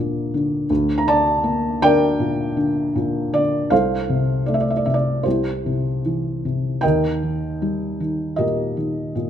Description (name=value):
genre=classical, lyrical solo piano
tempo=78 BPM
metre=4/4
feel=rubato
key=unclear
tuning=A4 = 442 Hz
part: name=felt-muted upright piano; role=solo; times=0.0-9.3 s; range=C2 to Bb5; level=-18 LUFS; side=equal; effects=none
room=moderate recital hall reverb, RT60 1.6 s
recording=dark, warm production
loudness=-18 LUFS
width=side -9 dB against mid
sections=0.0-9.3 A section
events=none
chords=0.0 Bb/D; 0.7 Gm/D; 3.7 F/C; 5.3 C; 6.8 Eb